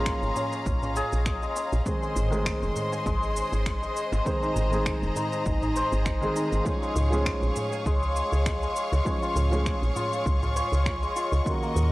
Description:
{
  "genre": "organic downtempo",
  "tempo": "100 BPM",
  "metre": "4/4",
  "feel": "swing 55% on 16ths",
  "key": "unclear",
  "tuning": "A4 = 440 Hz",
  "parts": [
    { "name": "felt-muted upright piano", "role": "accompaniment", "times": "0.0-11.9 s", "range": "Eb3 to Db5", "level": "-33 LUFS", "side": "right 1 dB", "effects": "sidechain pumping, low-pass filter, tape echo" },
    { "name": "rich studio string section", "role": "sustained chords", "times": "0.0-11.9 s", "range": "Ab4 to Db6", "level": "-33 LUFS", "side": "equal", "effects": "sidechain pumping" },
    { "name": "santur", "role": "arpeggios", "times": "0.0-11.9 s", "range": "Ab3 to Ab5", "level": "-30 LUFS", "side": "left 2 dB", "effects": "tape echo" },
    { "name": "woody FM bass", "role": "bass", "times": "0.0-11.9 s", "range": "F1 to Eb2", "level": "-26 LUFS", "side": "equal", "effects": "sidechain pumping" },
    { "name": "electronic finger snaps and shaker", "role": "drums", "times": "0.1-11.9 s", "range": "none", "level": "-36 LUFS", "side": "equal", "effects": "overdrive" },
    { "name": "electronic kick drum", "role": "drums", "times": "0.1-11.6 s", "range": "none", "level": "-31 LUFS", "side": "equal", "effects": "overdrive" },
    { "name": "darbuka", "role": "percussion", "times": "0.4-11.9 s", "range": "none", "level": "-38 LUFS", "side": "right 1 dB", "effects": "none" }
  ],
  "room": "small room reverb",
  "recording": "dry, gritty hardware recording",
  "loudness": "-24 LUFS",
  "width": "side -18 dB against mid",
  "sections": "0.0-11.9 A section",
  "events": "none",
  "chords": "0.0 Bbm7; 1.9 Ab; 6.7 Db"
}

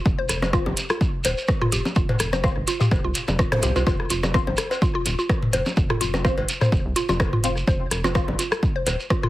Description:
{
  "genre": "minimal techno",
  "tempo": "126 BPM",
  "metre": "4/4",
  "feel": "swing 55% on 16ths",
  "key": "F minor",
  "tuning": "A4 = 440 Hz",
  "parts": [
    { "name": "rubbery square bass", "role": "bass", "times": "0.1-9.0 s", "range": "Eb1 to C2", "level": "-27 LUFS", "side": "equal", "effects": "sidechain pumping" },
    { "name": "electronic kick drum", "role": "drums", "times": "0.1-9.2 s", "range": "none", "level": "-23 LUFS", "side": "equal", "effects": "overdrive" },
    { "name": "shekere", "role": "percussion", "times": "0.1-9.2 s", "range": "none", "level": "-30 LUFS", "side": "right 2 dB", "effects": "none" },
    { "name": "mallet-like synth pluck", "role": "riff", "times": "0.2-9.3 s", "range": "F4 to C5", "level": "-28 LUFS", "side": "equal", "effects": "chorus, sidechain pumping, dub echo" },
    { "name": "house drum kit", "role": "drums", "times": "0.3-9.2 s", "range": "hi-hat, rim click", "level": "-28 LUFS", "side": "equal", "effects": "overdrive" },
    { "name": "garage drum kit", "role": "percussion", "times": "0.3-9.3 s", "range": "bongos, cowbell, rim click, toms", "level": "-25 LUFS", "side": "left 1 dB", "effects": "digital delay" },
    { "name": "filtered dub chord stab", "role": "stabs", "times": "0.5-8.3 s", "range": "C4 to C5", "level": "-31 LUFS", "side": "left 2 dB", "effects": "phaser, wide subtle chorus, digital delay" },
    { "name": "zap", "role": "sound effects", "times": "3.5-3.6 s", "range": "none", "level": "-35 LUFS", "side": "equal", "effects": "none" }
  ],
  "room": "light reverb",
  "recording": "heavily compressed radio sound",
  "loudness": "-20 LUFS",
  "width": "side -16 dB against mid",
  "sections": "0.0-9.3 A section",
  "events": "none",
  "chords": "0.0 F5"
}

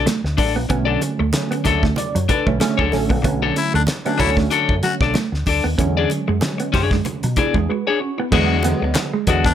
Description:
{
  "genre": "funk",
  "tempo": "94 BPM",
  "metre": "4/4",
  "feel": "swing 56% on 16ths",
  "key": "B dorian",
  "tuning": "A4 = 440 Hz",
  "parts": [
    { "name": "electric guitar at the edge of break-up", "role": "accompaniment", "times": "0.0-9.5 s", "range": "G#3 to D5", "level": "-21 LUFS", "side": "left 8 dB", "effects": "plate reverb" },
    { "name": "tine electric piano", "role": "stabs", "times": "0.0-9.5 s", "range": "D3 to E5", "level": "-23 LUFS", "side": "right 3 dB", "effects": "phaser, plate reverb" },
    { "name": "fingered electric bass with an envelope filter", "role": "bass", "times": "0.0-9.5 s", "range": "A1 to B2", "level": "-22 LUFS", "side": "equal", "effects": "none" },
    { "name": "mellow electric guitar", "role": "riff", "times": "0.1-9.4 s", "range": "F#3 to B3", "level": "-24 LUFS", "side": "right 5 dB", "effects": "none" },
    { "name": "cloth-damped thuddy drum kit", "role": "drums", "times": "0.1-9.5 s", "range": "crash cymbal, hi-hat, kick drum, snare drum", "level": "-22 LUFS", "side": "equal", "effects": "none" },
    { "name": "congas", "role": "percussion", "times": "0.1-9.1 s", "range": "none", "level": "-31 LUFS", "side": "right 4 dB", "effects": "none" },
    { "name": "raspy baritone saxophone", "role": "second line", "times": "3.6-4.9, 9.5 s", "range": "D4 to F#4", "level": "-21 LUFS", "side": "left 6 dB", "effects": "none" },
    { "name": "group handclap", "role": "percussion", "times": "8.9-9.1 s", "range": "none", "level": "-26 LUFS", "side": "left 7 dB", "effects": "none" }
  ],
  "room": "light reverb",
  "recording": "none",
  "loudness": "-16 LUFS",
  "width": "side -10 dB against mid",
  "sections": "0.0-8.3 A section; 8.3-9.5 B section",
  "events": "tine electric piano fill 1.3-3.2; break 7.7-8.3",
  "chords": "0.0 Bm9; 5.8 E13; 8.3 E9"
}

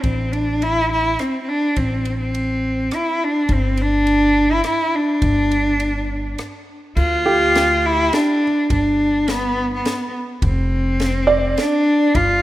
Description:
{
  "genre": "acoustic folk-pop ballad",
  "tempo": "104 BPM",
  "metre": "3/4",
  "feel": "straight",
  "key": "D minor",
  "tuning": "A4 = 440 Hz",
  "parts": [
    { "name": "rich cello", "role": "melody", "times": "0.0-12.4 s", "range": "B3 to F4", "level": "-17 LUFS", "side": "equal", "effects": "none" },
    { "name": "upright bass", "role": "bass", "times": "0.0-12.4 s", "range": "F1 to D2", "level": "-23 LUFS", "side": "equal", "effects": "none" },
    { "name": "compact cocktail drum kit", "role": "drums", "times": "0.0-12.3 s", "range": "crash cymbal, kick drum, ride cymbal, rim click, snare drum", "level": "-25 LUFS", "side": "equal", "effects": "none" },
    { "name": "felt-muted upright piano", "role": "arpeggios", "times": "7.3-8.4, 11.3-12.4 s", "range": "G4 to D5", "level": "-20 LUFS", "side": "right 3 dB", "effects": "none" }
  ],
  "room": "moderate lush hall reverb, RT60 2.2 s",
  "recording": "rough home demo mix",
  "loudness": "-16 LUFS",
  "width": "side -15 dB against mid",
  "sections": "0.0-7.0 A section; 7.0-12.4 B section",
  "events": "none",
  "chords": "0.0 Am; 3.5 G5; 7.0 Dm; 8.7 G5; 10.4 Dm7/F"
}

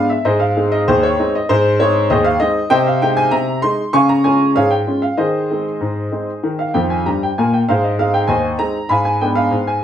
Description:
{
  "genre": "ragtime piano",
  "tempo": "97 BPM",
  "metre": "2/4",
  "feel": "straight",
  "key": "Ab major",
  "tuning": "A4 = 440 Hz",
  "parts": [
    { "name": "warm baby grand piano", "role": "solo", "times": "0.0-9.8 s", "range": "Eb2 to Db6", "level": "-14 LUFS", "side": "equal", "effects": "none" }
  ],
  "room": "wet studio reverb, RT60 0.5 s",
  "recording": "band playing live in one room",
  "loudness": "-14 LUFS",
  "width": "side -9 dB against mid",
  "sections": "0.0-9.8 A section",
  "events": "grand piano fill 6.7-7.7",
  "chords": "0.2 Ab; 2.7 Ab/C; 3.9 Db; 5.2 Ab/Eb; 6.4 Eb; 7.7 Ab; 8.9 Abdim7"
}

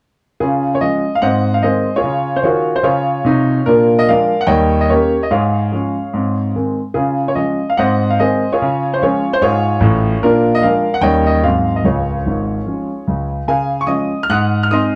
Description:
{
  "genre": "jazz, stride piano",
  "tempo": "147 BPM",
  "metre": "4/4",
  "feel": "swing 59% on 8ths",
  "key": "Db major",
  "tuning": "A4 = 440 Hz",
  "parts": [
    { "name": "clear concert grand piano", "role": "solo", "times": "0.4-15.0 s", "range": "Ab1 to Gb6", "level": "-15 LUFS", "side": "equal", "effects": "none" }
  ],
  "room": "moderate small room reverb, RT60 0.5 s",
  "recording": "none",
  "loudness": "-16 LUFS",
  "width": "mono",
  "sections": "0.4-13.5 A section; 13.5-15.0 A section",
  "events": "none",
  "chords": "0.4 Db; 1.2 Ab; 2.0 Db; 3.7 Bb7; 4.5 Eb7; 5.3 Db/Ab; 6.1 Ab; 6.9 Db; 7.8 Ab; 8.6 Db; 10.2 Bb7; 11.0 Eb7; 11.4 Ab7; 11.9 Db; 14.3 Ab7"
}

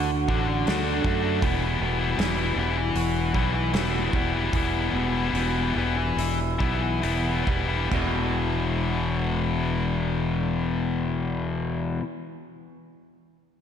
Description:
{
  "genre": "quiet-loud alternative rock",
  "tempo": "67-79 BPM",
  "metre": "4/4",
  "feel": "straight",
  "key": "E minor",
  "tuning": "A4 = 441 Hz",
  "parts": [
    { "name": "electric guitar through a small old amp", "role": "arpeggios", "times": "0.0-12.1 s", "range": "E2 to F#4", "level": "-30 LUFS", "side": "right 2 dB", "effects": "analog delay, slapback echo" },
    { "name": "distorted electric guitar", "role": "riff", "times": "0.0-12.0 s", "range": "E2 to F#4", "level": "-26 LUFS", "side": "left 5 dB", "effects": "overdrive, slapback echo" },
    { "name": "fuzz fingered electric bass", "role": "bass", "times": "0.0-12.0 s", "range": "E1 to F#2", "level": "-28 LUFS", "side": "right 1 dB", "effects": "overdrive" },
    { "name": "loose indie drum kit", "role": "drums", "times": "0.3-8.1 s", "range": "china cymbal, hi-hat, kick drum, snare drum, toms", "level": "-29 LUFS", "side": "right 1 dB", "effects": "none" }
  ],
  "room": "moderate lush hall reverb, RT60 2.7 s",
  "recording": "big arena sound",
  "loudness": "-23 LUFS",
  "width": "side -8 dB against mid",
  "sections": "0.0-7.9 A section; 7.9-11.5 B section",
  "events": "slowing down 1.4-7.9",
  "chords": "0.0 D; 1.4 Emadd9; 4.5 Em; 7.9 E"
}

